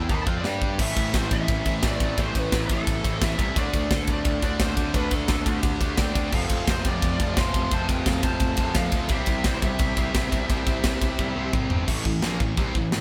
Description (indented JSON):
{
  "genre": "heavy metal",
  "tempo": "173 BPM",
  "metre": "4/4",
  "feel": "straight",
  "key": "A minor",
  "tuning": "A4 = 438 Hz",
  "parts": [
    { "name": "high-gain lead guitar", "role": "melody", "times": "0.0-11.5 s", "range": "G4 to C6", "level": "-34 LUFS", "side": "equal", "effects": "distortion, delay" },
    { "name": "clear studio string section", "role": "sustained chords", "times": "0.0-11.9 s", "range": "C3 to D6", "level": "-46 LUFS", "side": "equal", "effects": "none" },
    { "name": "high-gain distorted guitar", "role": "riff", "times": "0.0-13.0 s", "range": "F2 to G4", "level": "-32 LUFS", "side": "equal", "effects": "distortion" },
    { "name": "scooped high-gain guitar", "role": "riff", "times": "0.0-13.0 s", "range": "F2 to G4", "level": "-36 LUFS", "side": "equal", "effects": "distortion" },
    { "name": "fuzz picked electric bass", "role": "bass", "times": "0.0-13.0 s", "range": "F1 to G2", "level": "-32 LUFS", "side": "equal", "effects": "overdrive" },
    { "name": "tight metal drum kit", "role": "drums", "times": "0.1-13.0 s", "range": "crash cymbal, kick drum, ride cymbal, snare drum, toms", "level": "-27 LUFS", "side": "equal", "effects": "none" },
    { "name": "high-gain lead guitar", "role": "second line", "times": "6.0-11.5 s", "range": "E4 to F5", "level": "-38 LUFS", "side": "equal", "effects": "distortion" }
  ],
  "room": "light reverb",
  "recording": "band playing live in one room",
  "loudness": "-24 LUFS",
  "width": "mono",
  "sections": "0.8-11.9 A section; 11.9-13.0 B section",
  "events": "drum fill 0.5-0.8, 11.2-11.9",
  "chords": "0.5 G5; 0.8 Am; 3.6 Dm; 6.3 F; 9.1 C; 11.9 Am"
}